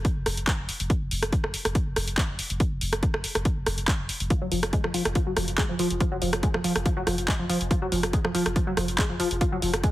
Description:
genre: driving peak-time techno.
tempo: 141 BPM.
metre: 4/4.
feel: straight.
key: F phrygian.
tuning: A4 = 444 Hz.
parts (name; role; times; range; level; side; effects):
saturated sub bass; bass; 0.0-9.8 s; F1; -32 LUFS; equal; tube saturation, sidechain pumping, low-pass filter.
electronic kick drum; drums; 0.0-9.9 s; none; -26 LUFS; equal; overdrive.
techno drum kit; drums; 0.0-9.9 s; handclaps, hi-hat, rim click; -28 LUFS; equal; overdrive, sidechain pumping on hats, sidechain pumping on cymbals.
tight sequenced synth; riff; 4.3-9.9 s; F3 to Ab3; -28 LUFS; equal; chorus, phaser, sidechain pumping, dub echo.
room: light reverb.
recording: heavily compressed radio sound, multiband compression.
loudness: -23 LUFS.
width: side -16 dB against mid.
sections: 0.0-9.9 A section.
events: none.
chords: none.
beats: 0.05 0.47 | 0.90 1.32 1.75 2.18 | 2.60 3.03 3.45 3.88 | 4.30 4.73 5.16 5.58 | 6.01 6.43 6.86 7.28 | 7.71 8.13 8.56 8.98 | 9.41 9.84.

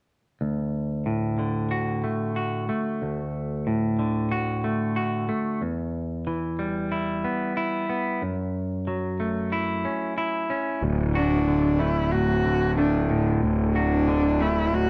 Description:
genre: rock.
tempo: 92 BPM.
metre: 4/4.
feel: straight.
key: D major.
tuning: A4 = 440 Hz.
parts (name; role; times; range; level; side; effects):
semi-hollow electric guitar; arpeggios; 0.4-14.9 s; D2 to F#4; -27 LUFS; equal; none.
fuzz picked electric bass; bass; 10.8-14.9 s; D1; -27 LUFS; equal; overdrive.
dark cello; melody; 11.2-14.9 s; D4 to F#4; -27 LUFS; equal; none.
room: moderate stone room reverb, RT60 1.0 s.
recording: band playing live in one room.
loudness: -25 LUFS.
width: mono.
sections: 0.4-10.8 A section; 10.8-14.9 B section.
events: none.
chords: 0.4 D; 5.6 Em; 8.2 F#m7; 10.8 D.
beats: | 0.42 1.07 1.72 2.37 | 3.02 3.67 4.32 4.97 | 5.62 6.27 6.92 7.57 | 8.22 8.87 9.53 10.18 | 10.83 11.48 12.13 12.78 | 13.43 14.09 14.74.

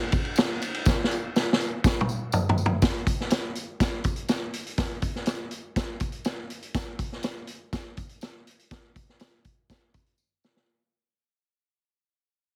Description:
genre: soul.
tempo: 122 BPM.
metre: 4/4.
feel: straight.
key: none.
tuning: none.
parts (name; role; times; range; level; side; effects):
vintage drum kit; drums; 0.1-10.7 s; hi-hat, kick drum, ride cymbal, snare drum, toms; -28 LUFS; equal; none.
tambourine; percussion; 0.1-10.6 s; none; -44 LUFS; equal; none.
room: light reverb.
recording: heavily compressed radio sound, multiband compression.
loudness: -28 LUFS.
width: mono.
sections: 0.0-2.8 A section; 2.8-10.7 B section.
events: drum fill 0.9-2.8, 10.2-10.7; fade-out 2.8-10.7.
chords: none.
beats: 0.37 | 0.86 1.35 1.84 2.33 | 2.82 3.31 3.80 4.29 | 4.78 5.27 5.76 6.25 | 6.75 7.24 7.73 8.22 | 8.71 9.20 9.70 10.19.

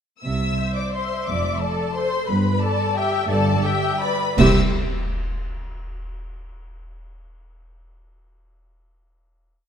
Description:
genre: classical, orchestral ballroom waltz.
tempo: 158-194 BPM.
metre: 3/4.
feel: rubato.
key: C major.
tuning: A4 = 440 Hz.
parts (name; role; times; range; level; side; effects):
rich studio violin section; melody; 0.2-4.6 s; G5 to E6; -27 LUFS; left 5 dB; none.
rich studio violin section; second line; 0.2-4.6 s; G4 to E5; -27 LUFS; left 2 dB; none.
dark studio double bass section; bass; 0.2-4.6 s; F1 to C2; -25 LUFS; right 2 dB; none.
warm studio cello section; bass; 0.2-4.6 s; F2 to C3; -24 LUFS; right 1 dB; none.
warm studio viola section; accompaniment; 0.6-4.6 s; C4 to E5; -27 LUFS; equal; none.
cymbal swell, clash cymbals and concert bass drum; percussion; 2.3-5.0 s; none; -27 LUFS; equal; none.
room: moderate concert hall reverb, RT60 1.9 s.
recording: dark, warm production.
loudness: -19 LUFS.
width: side -8 dB against mid.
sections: 0.2-4.4 A section; 4.4-5.4 final chord.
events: band accent 4.4-4.7.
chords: 0.2 C; 1.3 Dm/F; 2.3 G; 4.4 C5.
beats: | 0.24 0.59 0.95 | 1.28 1.62 1.97 | 2.29 2.62 2.96 | 3.29 3.64 4.01 | 4.37 4.72.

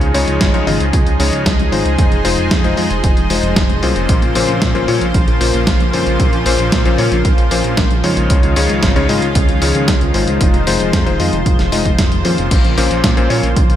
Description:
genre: italo disco.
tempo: 114 BPM.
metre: 4/4.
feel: straight.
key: Bb minor.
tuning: A4 = 440 Hz.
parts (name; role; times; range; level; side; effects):
lush unison pad; sustained chords; 0.0-13.8 s; Db3 to C5; -19 LUFS; equal; chorus.
clear electric grand piano; stabs; 0.0-13.5 s; Bb2 to Eb5; -18 LUFS; left 4 dB; ping-pong delay.
chorused synth bass; bass; 0.0-13.8 s; F1 to Bb2; -18 LUFS; right 1 dB; none.
dusty soul sampler-style drum kit; drums; 0.0-13.8 s; crash cymbal, hi-hat, snare drum; -20 LUFS; equal; studio reverb, gated reverb.
electronic kick drum; drums; 0.4-13.7 s; none; -15 LUFS; right 1 dB; studio reverb.
room: digital ambience.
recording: none.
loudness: -11 LUFS.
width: side -11 dB against mid.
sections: 0.0-13.8 A section.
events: none.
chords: 0.0 Dbadd9; 2.0 Fm7; 4.1 Bbmadd9; 8.3 Dbadd9; 10.4 Fm7; 12.5 Bbmadd9.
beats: 0.41 0.93 1.46 | 1.99 2.51 3.04 3.56 | 4.09 4.62 5.14 5.67 | 6.20 6.72 7.25 7.78 | 8.30 8.83 9.36 9.88 | 10.41 10.93 11.46 11.99 | 12.51 13.04 13.56.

